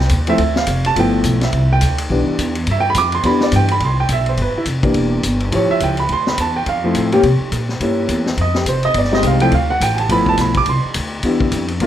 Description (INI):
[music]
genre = jazz piano trio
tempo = 210 BPM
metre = 4/4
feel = swing 60% on 8ths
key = C major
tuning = A4 = 440 Hz
[part]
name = warm upright piano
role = melody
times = 0.0-11.9 s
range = E3 to D6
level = -16 LUFS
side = right 1 dB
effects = plate reverb
[part]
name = upright bass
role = bass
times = 0.0-11.9 s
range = E1 to C3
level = -18 LUFS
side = equal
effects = none
[part]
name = vintage drum kit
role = drums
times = 0.0-11.9 s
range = hi-hat, kick drum, ride cymbal, snare drum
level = -23 LUFS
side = left 2 dB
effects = none
[sound]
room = moderate club reverb, RT60 0.7 s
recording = none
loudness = -14 LUFS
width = side -11 dB against mid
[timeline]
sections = 0.0-3.8 A section; 3.8-11.9 A section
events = upright piano solo 0.0-11.9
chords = 0.4 Dm; 1.0 G13; 1.5 Cmaj9; 3.8 Cmaj7; 5.0 Em7b5; 5.5 A7b13; 6.1 Dm9; 7.2 C7b9; 8.4 Fm9; 9.5 D5; 10.1 G13; 10.7 Cmaj9